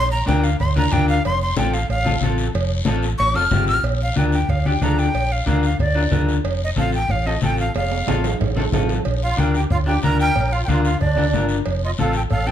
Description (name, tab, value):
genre	latin, cumbia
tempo	184 BPM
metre	4/4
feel	straight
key	Bb major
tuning	A4 = 440 Hz
part	breathy bright jazz flute	melody	0.0-12.5 s	D5 to F6	-23 LUFS	equal	none
part	hollow-body short-scale fingered electric bass	bass	0.0-12.5 s	F1 to D2	-21 LUFS	right 1 dB	none
part	congas	percussion	0.1-12.5 s	none	-25 LUFS	left 3 dB	none
part	electric guitar at the edge of break-up	accompaniment	0.3-12.5 s	C4 to Bb4	-24 LUFS	left 3 dB	none
part	guiro	percussion	0.3-12.5 s	none	-34 LUFS	left 6 dB	none
part	cowbell and timbales	percussion	0.6-12.5 s	none	-28 LUFS	right 8 dB	none
part	musette accordion	second line	9.2-12.5 s	D4 to Bb4	-28 LUFS	right 6 dB	none
room	light reverb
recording	dark, warm production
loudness	-17 LUFS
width	side -10 dB against mid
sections	0.0-3.8 A section; 3.8-12.5 B section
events	flute solo 0.0-3.8; drum fill 7.8-9.1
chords	0.0 Bb; 1.2 F; 3.8 Bb; 6.5 F; 9.1 Bb; 11.7 F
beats	0.28 0.60 0.93 | 1.25 1.57 1.90 2.22 | 2.55 2.87 3.20 3.52 | 3.85 4.17 4.50 4.82 | 5.15 5.47 5.80 6.12 | 6.45 6.78 7.10 7.42 | 7.75 8.08 8.40 8.73 | 9.05 9.38 9.70 10.03 | 10.35 10.68 11.00 11.33 | 11.65 11.98 12.30